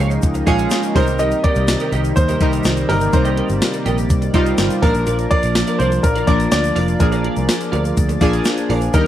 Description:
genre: 1980s-style pop.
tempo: 124 BPM.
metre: 4/4.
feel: straight.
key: unclear.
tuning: A4 = 440 Hz.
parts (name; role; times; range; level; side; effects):
chorused retro synth keys; accompaniment; 0.0-9.1 s; F3 to G5; -21 LUFS; left 1 dB; none.
chorused pulse-width pad; sustained chords; 0.0-9.1 s; C3 to D5; -24 LUFS; equal; none.
twelve-string electric guitar; riff; 0.0-9.1 s; F4 to F5; -26 LUFS; right 3 dB; ensemble chorus, slapback echo.
vintage muted picked electric bass; bass; 0.0-9.1 s; F1 to Eb2; -20 LUFS; equal; none.
gated 80s digital drum machine; drums; 0.1-9.1 s; hi-hat, kick drum, snare drum, tambourine; -18 LUFS; equal; gated reverb, gated reverb snare.
tube shaker; percussion; 0.1-9.1 s; none; -38 LUFS; left 13 dB; none.
clear baby grand piano; melody; 1.0-9.1 s; Bb4 to Eb5; -21 LUFS; equal; slapback echo.
room: little or no reverb.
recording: dry, close 1970s-style studio recording, faint mains hum.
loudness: -14 LUFS.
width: side -12 dB against mid.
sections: 0.0-9.1 A section.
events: none.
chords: 0.0 Bbm7; 1.0 Cm7; 4.8 Bb.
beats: 0.23 0.71 | 1.20 1.68 2.17 2.65 | 3.13 3.62 4.10 4.58 | 5.07 5.55 6.04 6.52 | 7.00 7.49 7.97 8.46 | 8.94.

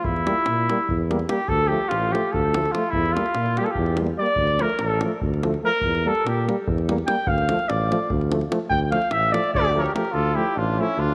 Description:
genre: balkan folk, Balkan brass band.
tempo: 292 BPM (eighths).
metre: 7/8.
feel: straight.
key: D minor.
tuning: A4 = 440 Hz.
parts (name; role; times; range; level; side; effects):
warm flugelhorn; second line; 0.0-11.1 s; C#4 to G5; -26 LUFS; equal; none.
warm tuba; bass; 0.0-11.1 s; A1 to Bb2; -27 LUFS; equal; none.
davul; percussion; 0.0-10.1 s; none; -33 LUFS; equal; none.
mellow euphonium; accompaniment; 0.3-10.9 s; F3 to G3; -34 LUFS; equal; none.
warm trombone; accompaniment; 0.3-10.9 s; A3 to Bb3; -34 LUFS; equal; none.
warm trumpet; melody; 9.6-11.1 s; E4 to D5; -27 LUFS; equal; none.
room: wet plate reverb, RT60 2.7 s.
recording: none.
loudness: -22 LUFS.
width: mono.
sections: 0.0-10.1 A section; 10.1-11.1 B section.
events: flugelhorn solo 0.0-10.1.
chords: 0.1 Edim; 1.5 Dm; 2.9 Edim; 4.4 Dm; 5.8 Edim; 7.3 Dm.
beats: | 0.05 0.26 0.47 0.67 0.88 1.09 1.29 | 1.50 1.71 1.91 2.12 2.33 2.53 2.74 | 2.94 3.15 3.36 3.56 3.77 3.97 4.18 | 4.39 4.59 4.80 5.00 5.21 5.41 5.62 | 5.83 6.03 6.24 6.44 6.65 6.85 7.06 | 7.26 7.47 7.67 7.88 8.08 8.29 8.49 | 8.70 8.90 9.11 9.31 9.52 9.72 9.93 | 10.13 10.34 10.54 10.75 10.95.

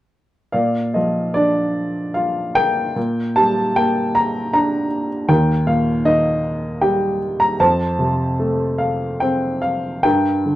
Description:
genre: classical, lyrical solo piano.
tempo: 71-79 BPM.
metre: 3/4.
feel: rubato.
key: Bb major.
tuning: A4 = 440 Hz.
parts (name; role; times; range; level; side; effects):
warm upright piano; solo; 0.5-10.6 s; Eb2 to Bb5; -16 LUFS; equal; none.
room: light reverb.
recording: dark, warm production.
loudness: -16 LUFS.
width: side -15 dB against mid.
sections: 0.5-10.1 A section.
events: none.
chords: 0.5 Bb; 3.0 Gm/Bb; 5.3 Eb; 7.6 F; 10.1 Gm.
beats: | 0.53 1.35 2.16 | 2.96 3.76 4.53 | 5.29 6.06 6.83 | 7.60 8.40 9.22 | 10.05.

